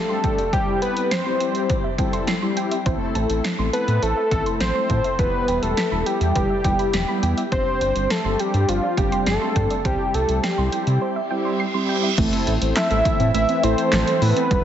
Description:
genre	synth-pop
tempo	103 BPM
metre	4/4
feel	straight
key	unclear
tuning	A4 = 440 Hz
part	fat analog lead	melody	0.0-14.6 s	F4 to E5	-22 LUFS	equal	chorus, digital delay, shimmer reverb
part	soft round pluck	arpeggios	0.0-14.6 s	G3 to C7	-30 LUFS	right 5 dB	chorus, digital delay, shimmer reverb
part	mellow synth brass	accompaniment	0.1-14.6 s	G3 to C5	-25 LUFS	left 2 dB	chorus, shimmer reverb
part	punchy analog drum machine	drums	0.2-14.6 s	crash cymbal, handclaps, hi-hat, kick drum, snare drum	-25 LUFS	equal	none
part	round analog bass	bass	2.9-14.6 s	E1 to C3	-23 LUFS	equal	none
part	reverse cymbal	sound effects	11.3-12.2 s	none	-29 LUFS	right 7 dB	none
part	sweeping resonant pad	sustained chords	12.9-14.6 s	E3 to C4	-29 LUFS	right 1 dB	chorus, phaser, shimmer reverb
room	moderate lush hall reverb, RT60 2.2 s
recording	heavily compressed radio sound, multiband compression, nothing above 7.9 kHz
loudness	-18 LUFS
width	side -10 dB against mid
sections	0.0-12.2 A section; 12.2-14.6 B section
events	reverse cymbal 11.3-12.2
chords	0.0 Gsus4; 0.5 C; 2.9 Am; 5.2 Em; 7.5 Gsus4; 9.8 C; 12.2 Am

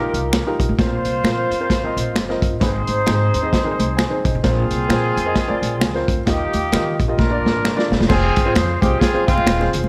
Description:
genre	uptempo 1960s-style soul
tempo	131 BPM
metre	4/4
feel	swing 59% on 8ths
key	Bb mixolydian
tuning	A4 = 440 Hz
part	clear horn section	second line	0.0-9.7 s	Ab3 to C5	-25 LUFS	equal	none
part	dark baby grand piano	accompaniment	0.0-9.9 s	Ab2 to Ab5	-25 LUFS	equal	none
part	upright bass	bass	0.1-9.9 s	Eb1 to Eb3	-25 LUFS	equal	none
part	vintage drum kit	drums	0.1-9.8 s	crash cymbal, hi-hat, kick drum, snare drum	-23 LUFS	equal	none
part	finger snap	percussion	0.3-9.6 s	none	-30 LUFS	equal	none
part	congas	percussion	8.1-9.9 s	none	-30 LUFS	equal	none
room	light reverb, small room ambience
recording	none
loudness	-18 LUFS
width	mono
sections	0.0-8.1 A section; 8.1-9.9 B section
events	grand piano fill 3.8-4.4; drum fill 7.2-8.1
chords	0.0 Ebadd9; 0.8 Bbsus2; 2.6 Ab; 4.4 Bbsus2; 6.3 Ebadd9; 7.2 Bb; 8.1 Fm

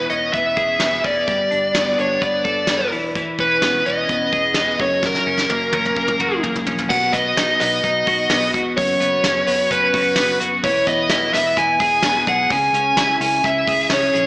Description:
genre	jangly indie pop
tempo	128 BPM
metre	4/4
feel	straight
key	B major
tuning	A4 = 438 Hz
part	dark smooth lead guitar	melody	0.0-14.2 s	A#4 to G#5	-17 LUFS	equal	overdrive
part	twelve-string electric guitar	arpeggios	0.0-14.3 s	F#2 to A4	-22 LUFS	left 1 dB	analog chorus, slapback echo
part	vintage muted fingered electric bass	bass	0.0-14.3 s	E1 to C#2	-34 LUFS	equal	none
part	soft brush drum kit	drums	0.1-14.3 s	crash cymbal, hi-hat, kick drum, snare drum, toms	-24 LUFS	equal	none
room	wet lush hall reverb, RT60 2.0 s, studio ambience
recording	big arena sound, small speaker sound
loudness	-15 LUFS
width	side -22 dB against mid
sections	0.0-6.9 A section; 6.9-14.3 B section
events	drum fill 5.0-6.9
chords	0.0 E6; 1.3 Gadd9; 2.9 E6; 4.8 F#add9; 6.9 B; 8.8 F#sus4; 10.6 E; 12.5 C#m

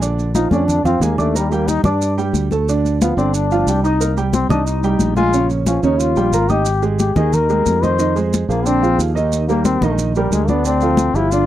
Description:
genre	Afro-Cuban jazz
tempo	181 BPM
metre	4/4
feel	straight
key	unclear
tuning	A4 = 439 Hz
part	dark upright piano	accompaniment	0.0-11.5 s	Db3 to Eb6	-19 LUFS	right 5 dB	none
part	sustaining fretless electric bass	bass	0.0-11.5 s	G1 to G2	-19 LUFS	equal	none
part	congas	percussion	0.0-11.5 s	none	-21 LUFS	left 2 dB	none
part	maracas	percussion	0.0-11.5 s	none	-31 LUFS	right 8 dB	none
part	clear trombone	second line	0.3-11.5 s	G3 to C5	-19 LUFS	left 5 dB	none
room	light reverb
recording	dry, close 1970s-style studio recording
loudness	-14 LUFS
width	side -12 dB against mid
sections	0.0-6.7 A section; 6.7-11.5 A section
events	trombone solo 0.0-11.5; drum fill 0.5-1.3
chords	0.0 Bb7; 1.3 Ebmaj7; 2.7 Dm; 3.3 G5; 4.0 Cm7; 5.3 Bbm; 6.0 Eb9; 6.7 Absus2; 8.0 Fm7; 8.7 Bb9; 9.3 Eb6; 10.6 Dm7

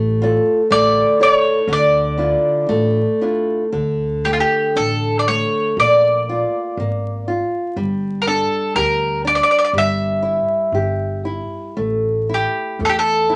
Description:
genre	fado-style ballad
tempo	59 BPM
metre	2/4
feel	uneven beats, rubato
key	D harmonic minor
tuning	A4 = 440 Hz
part	nylon-string guitar	accompaniment	0.0-13.4 s	D3 to D5	-22 LUFS	equal	none
part	upright bass	bass	0.0-13.4 s	G1 to E2	-27 LUFS	equal	none
part	mandolin	melody	0.7-13.3 s	F4 to E5	-19 LUFS	equal	none
room	moderate studio ambience, RT60 0.4 s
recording	vinyl crackle, nothing above 10.4 kHz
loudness	-18 LUFS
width	mono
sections	0.0-3.7 A section; 3.7-13.4 B section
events	none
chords	0.0 Dm/A; 0.7 A; 1.7 Dmadd9; 3.7 D5; 5.8 Bb; 7.8 G5; 9.7 Em/G; 11.8 A5

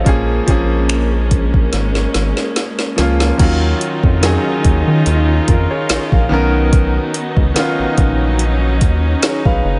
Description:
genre	contemporary R&B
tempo	72 BPM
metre	4/4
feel	swing 54% on 16ths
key	Eb minor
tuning	A4 = 440 Hz
part	clear concert grand piano	accompaniment	0.0-9.8 s	Eb3 to F5	-21 LUFS	equal	none
part	warm studio string section	sustained chords	0.0-9.8 s	Eb3 to F4	-24 LUFS	equal	sidechain pumping
part	rubbery square bass	bass	0.0-9.8 s	F#1 to Eb3	-18 LUFS	equal	none
part	smooth R&B drum kit	drums	0.1-9.6 s	crash cymbal, finger snaps, hi-hat, kick drum, snare drum	-18 LUFS	equal	none
room	digital ambience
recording	nothing above 10.7 kHz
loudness	-15 LUFS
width	mono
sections	0.0-3.4 A section; 3.4-9.8 B section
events	drum fill 1.7-3.4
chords	0.1 Bbm7; 3.4 Ebm9; 6.3 Bmaj9

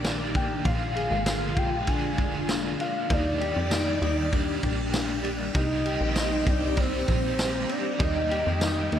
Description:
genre	dream pop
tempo	98 BPM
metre	4/4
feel	straight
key	Eb major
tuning	A4 = 439 Hz
part	biting overdriven guitar	accompaniment	0.0-9.0 s	Bb2 to Ab4	-34 LUFS	right 4 dB	tremolo, lush chorus
part	phased string machine	sustained chords	0.0-9.0 s	D3 to D5	-33 LUFS	equal	ensemble chorus, phaser
part	mellow electric guitar	arpeggios	0.0-9.0 s	C4 to Ab4	-31 LUFS	left 2 dB	ensemble chorus, tape echo
part	plucky analog bass	bass	0.0-9.0 s	F1 to F2	-31 LUFS	equal	none
part	vintage drum kit	drums	0.0-9.0 s	kick drum, ride cymbal, snare drum, tambourine	-29 LUFS	equal	none
part	soft octave-layered synth lead	melody	0.4-9.0 s	C5 to Ab5	-31 LUFS	equal	chorus, phaser, tape echo
room	moderate plate reverb, RT60 2.4 s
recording	dreamy mix soaked in reverb, lossy compression artefacts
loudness	-24 LUFS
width	side -10 dB against mid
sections	0.0-9.0 A section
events	none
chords	0.0 Ebmaj7; 0.7 Bb7; 3.1 Ebmaj7; 5.5 Cm7; 8.0 Eb

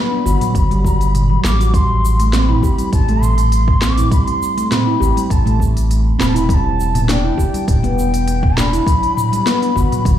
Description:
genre	organic downtempo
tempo	101 BPM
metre	4/4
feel	straight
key	A dorian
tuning	A4 = 437 Hz
part	bansuri	melody	0.0-10.2 s	G5 to D6	-21 LUFS	left 2 dB	ping-pong delay
part	handpan	arpeggios	0.0-10.1 s	F#3 to G4	-20 LUFS	equal	ping-pong delay
part	warm sub bass	bass	0.3-10.2 s	E1 to A1	-16 LUFS	equal	sidechain pumping
part	afro-pop drum kit	drums	0.3-10.2 s	hi-hat, shaker, snare drum, toms	-21 LUFS	right 1 dB	none
part	electronic kick drum	drums	0.5-10.2 s	none	-16 LUFS	equal	none
room	light reverb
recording	played on a big sound system in a bare room, large studio reverb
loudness	-13 LUFS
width	side -11 dB against mid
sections	0.0-10.2 A section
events	none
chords	0.0 Gmaj7; 1.7 Am7; 6.5 Em7; 8.9 Gmaj7

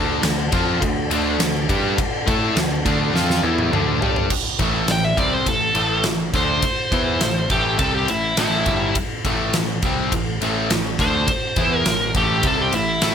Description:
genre	hard rock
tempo	103 BPM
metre	4/4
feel	straight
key	A minor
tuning	A4 = 440 Hz
part	tonewheel organ	sustained chords	0.0-4.3 s	D4 to A5	-32 LUFS	equal	none
part	crunchy overdriven guitar	riff	0.0-13.1 s	G2 to A4	-25 LUFS	right 11 dB	none
part	distorted electric guitar	riff	0.0-13.1 s	G2 to A4	-24 LUFS	left 11 dB	overdrive
part	modern bright picked electric bass	bass	0.0-13.1 s	G1 to A2	-26 LUFS	equal	none
part	huge arena drum kit	drums	0.2-13.1 s	crash cymbal, kick drum, ride cymbal, snare drum, toms	-22 LUFS	equal	none
part	smooth overdriven lead guitar	melody	4.9-13.1 s	E4 to G5	-21 LUFS	equal	none
room	light reverb, small room ambience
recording	none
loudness	-17 LUFS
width	side -8 dB against mid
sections	0.0-4.3 A section; 4.3-13.1 B section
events	drum fill 3.1-4.3; lead electric guitar solo 4.3-13.1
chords	0.0 D5; 4.3 Am

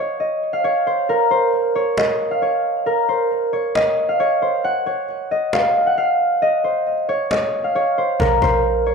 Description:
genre	hip hop, trap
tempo	135 BPM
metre	4/4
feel	half-time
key	Bb minor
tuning	A4 = 441 Hz
part	concert harp	melody	0.0-8.9 s	Bb4 to Gb5	-17 LUFS	equal	ping-pong delay
part	cajon	drums	1.1-8.9 s	none	-25 LUFS	equal	none
part	warm 808-style bass	bass	8.2-8.9 s	Bb1	-22 LUFS	equal	none
room	light reverb, small room ambience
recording	rough home demo mix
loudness	-16 LUFS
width	side -5 dB against mid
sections	0.0-1.1 A section; 1.1-8.9 B section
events	kick muted 1.1-8.2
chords	0.0 N.C.; 8.2 Bb5

